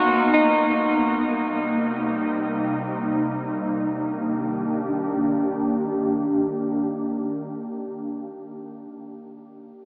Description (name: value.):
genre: dream pop.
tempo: free time.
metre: none.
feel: none.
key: Eb major.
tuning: A4 = 435 Hz.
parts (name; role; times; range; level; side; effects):
ethereal airy pad; sustained chords; 0.0-7.4 s; C3 to G4; -26 LUFS; equal; ensemble chorus, built-in reverb, low-pass filter.
electric guitar at the edge of break-up; arpeggios; 0.0-0.7 s; D#4 to F#4; -26 LUFS; equal; analog chorus, low-pass filter, tape echo.
room: wet huge ambient reverb, RT60 7.8 s.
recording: dreamy mix soaked in reverb, AM radio sound.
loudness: -24 LUFS.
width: mono.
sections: 0.0-3.8 A section; 3.8-6.9 B section.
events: filter sweep 0.0-3.8.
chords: 0.0 Bmaj7; 0.7 Cm7; 3.8 Ebmaj7.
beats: free time.